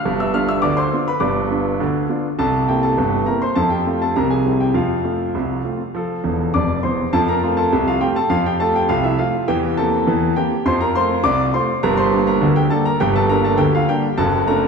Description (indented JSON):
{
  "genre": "ragtime piano",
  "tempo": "102 BPM",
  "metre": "2/4",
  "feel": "straight",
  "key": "F major",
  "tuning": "A4 = 440 Hz",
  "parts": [
    { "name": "clear grand piano", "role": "solo", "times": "0.0-14.7 s", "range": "E1 to F6", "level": "-16 LUFS", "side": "equal", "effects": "none" }
  ],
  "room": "wet scoring stage reverb, RT60 1.9 s",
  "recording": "recorded in a church or concert hall",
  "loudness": "-16 LUFS",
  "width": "side -5 dB against mid",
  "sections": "0.0-7.1 A section; 7.1-14.7 B section",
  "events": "grand piano fill 6.2-7.1",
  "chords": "0.0 G7; 2.4 C7; 3.6 F; 4.2 C7; 4.7 F; 9.5 C7/E; 10.7 F; 11.8 Gm; 14.2 D7/F#"
}